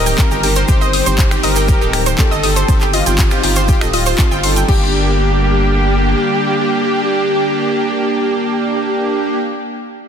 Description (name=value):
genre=progressive house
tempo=120 BPM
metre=4/4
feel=straight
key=G minor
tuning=A4 = 440 Hz
part: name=wide unison lead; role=melody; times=0.0-9.4 s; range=F4 to C5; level=-20 LUFS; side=left 1 dB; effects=sidechain pumping, ping-pong delay
part: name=lush unison pad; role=sustained chords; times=0.0-9.4 s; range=D3 to G4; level=-22 LUFS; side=equal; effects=chorus, sidechain pumping
part: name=saturated sub bass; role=bass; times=0.0-6.1 s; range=D1 to G1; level=-18 LUFS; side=equal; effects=sidechain pumping
part: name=analog pluck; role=arpeggios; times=0.1-4.9 s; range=G4 to Eb6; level=-20 LUFS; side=right 1 dB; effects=chorus, sidechain pumping, ping-pong delay
part: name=house drum kit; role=drums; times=0.1-4.8 s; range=crash cymbal, finger snaps, handclaps, hi-hat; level=-21 LUFS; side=left 1 dB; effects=none
part: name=cabasa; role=percussion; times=0.1-4.7 s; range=none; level=-27 LUFS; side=right 3 dB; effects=none
part: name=soft supersaw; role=stabs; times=0.2-9.4 s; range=Bb3 to A4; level=-19 LUFS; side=right 2 dB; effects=cassette tape, sidechain pumping, ping-pong delay
part: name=electronic kick drum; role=drums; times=0.2-4.8 s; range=none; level=-14 LUFS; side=equal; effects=none
room=light reverb, digital ambience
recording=dense, heavily limited modern master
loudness=-12 LUFS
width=side -8 dB against mid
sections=0.0-4.7 A section; 4.7-8.7 B section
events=drop 0.0-4.7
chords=0.0 Cm; 4.7 Gm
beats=0.18 | 0.69 1.19 1.69 2.19 | 2.69 3.19 3.69 4.18 | 4.68 5.18 5.68 6.18 | 6.68 7.18 7.68 8.19